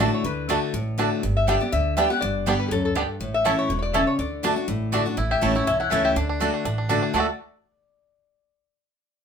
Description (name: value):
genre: bluegrass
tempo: 244 BPM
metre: 4/4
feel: swing 54% on 8ths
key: D major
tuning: A4 = 440 Hz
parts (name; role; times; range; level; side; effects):
- bluegrass banjo; melody; 0.0-7.3 s; G3 to A4; -28 LUFS; right 3 dB; none
- lap resonator guitar; melody; 0.0-7.3 s; G#4 to F#5; -26 LUFS; left 4 dB; none
- picked steel-string acoustic guitar; accompaniment; 0.0-7.3 s; E2 to G4; -25 LUFS; left 2 dB; none
- mandolin; stabs; 0.0-7.3 s; A3 to A5; -26 LUFS; right 6 dB; none
- upright bass; bass; 0.0-7.3 s; E1 to D2; -28 LUFS; right 1 dB; none
room: wet studio ambience, RT60 0.5 s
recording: minimal, uncompressed stereo recording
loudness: -20 LUFS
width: side -7 dB against mid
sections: 0.0-5.2 A section; 5.2-7.1 B section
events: none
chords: 0.0 D; 1.2 G; 3.2 A; 4.2 D; 5.2 A; 6.2 D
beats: 0.00 | 0.24 0.49 0.74 0.98 | 1.23 1.48 1.72 1.97 | 2.22 2.46 2.71 2.96 | 3.20 3.45 3.70 3.94 | 4.19 4.43 4.68 4.93 | 5.17 5.42 5.67 5.91 | 6.16 6.41 6.65 6.90 | 7.14